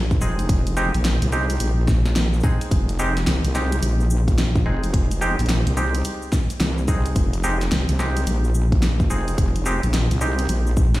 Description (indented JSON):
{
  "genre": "glitch hop",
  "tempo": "108 BPM",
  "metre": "4/4",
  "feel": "swing 63% on 16ths",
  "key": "F minor",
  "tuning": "A4 = 440 Hz",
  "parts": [
    { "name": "wobble bass", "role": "bass", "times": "0.0-11.0 s", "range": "F1 to C2", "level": "-20 LUFS", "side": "equal", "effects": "chorus, tube saturation" },
    { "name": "electronic kick drum", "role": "drums", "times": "0.1-10.9 s", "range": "none", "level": "-20 LUFS", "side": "equal", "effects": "none" },
    { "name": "pop drum kit", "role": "drums", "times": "0.1-11.0 s", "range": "hi-hat, shaker, snare drum", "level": "-27 LUFS", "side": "equal", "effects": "none" },
    { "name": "bright clav", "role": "stabs", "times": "0.2-10.9 s", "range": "Ab3 to Ab4", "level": "-27 LUFS", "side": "right 1 dB", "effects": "sidechain pumping, digital delay" }
  ],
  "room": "light reverb",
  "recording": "played on a big sound system in a bare room, stone room reverb",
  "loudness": "-18 LUFS",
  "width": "side -17 dB against mid",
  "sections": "0.0-11.0 A section",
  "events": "none",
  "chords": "0.0 Fm9",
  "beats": "| 0.49 1.05 1.60 2.16 | 2.71 3.27 3.83 4.38 | 4.94 5.49 6.05 6.60 | 7.16 7.71 8.27 8.82 | 9.38 9.94 10.49"
}